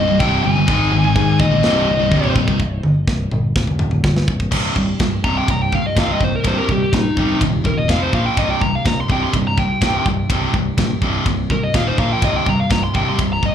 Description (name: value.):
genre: heavy metal.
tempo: 125 BPM.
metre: 4/4.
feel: straight.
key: C minor.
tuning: A4 = 436 Hz.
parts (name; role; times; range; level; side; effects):
high-gain lead guitar; melody; 0.0-2.3, 5.2-13.5 s; Eb4 to C6; -21 LUFS; left 1 dB; distortion, slapback echo, tape echo.
distorted electric guitar; riff; 0.0-13.5 s; C2 to Bb3; -22 LUFS; right 10 dB; distortion, slapback echo.
scooped high-gain guitar; riff; 0.0-13.5 s; C2 to Bb3; -22 LUFS; left 12 dB; distortion, slapback echo.
scooped high-gain guitar; riff; 0.0-2.6 s; C2 to Ab4; -25 LUFS; equal; distortion, slapback echo.
picked electric bass; bass; 0.0-13.5 s; C1 to Ab2; -21 LUFS; equal; none.
tight metal drum kit; drums; 0.2-13.5 s; china cymbal, crash cymbal, kick drum, ride cymbal, snare drum, toms; -20 LUFS; equal; none.
room: little or no reverb.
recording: live gig heard through the venue's PA, club reverb.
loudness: -15 LUFS.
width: side -9 dB against mid.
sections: 0.0-2.6 A section; 2.6-4.5 B section; 4.5-13.5 C section.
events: half time 0.0-2.6; drum fill 2.1-2.6, 2.6-4.5; lead electric guitar solo 4.5-13.5.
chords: 0.0 Cm; 0.7 Ab; 1.6 Cm; 7.9 F5; 8.1 Bb5; 8.4 C5; 11.7 Eb5; 12.0 Bb5; 12.2 C5.